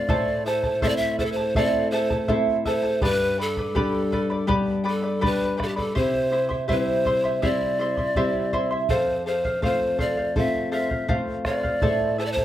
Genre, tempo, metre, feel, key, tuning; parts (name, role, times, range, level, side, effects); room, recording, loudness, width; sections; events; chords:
andean folk, Andean ensemble; 82 BPM; 4/4; straight; A minor; A4 = 439 Hz
breathy polished pan flute; melody; 0.0-12.4 s; G4 to E5; -25 LUFS; equal; slapback echo
charango; accompaniment; 0.0-12.4 s; E4 to C6; -26 LUFS; right 2 dB; slapback echo
nylon-string guitar; accompaniment; 0.0-12.4 s; F2 to F4; -28 LUFS; left 3 dB
bombo; percussion; 0.1-12.4 s; -29 LUFS; right 1 dB
light reverb; recorded outdoors, with no room sound; -21 LUFS; side -12 dB against mid
0.0-12.4 A section
0.1 Am; 3.0 G; 6.0 C; 8.9 F; 11.8 Am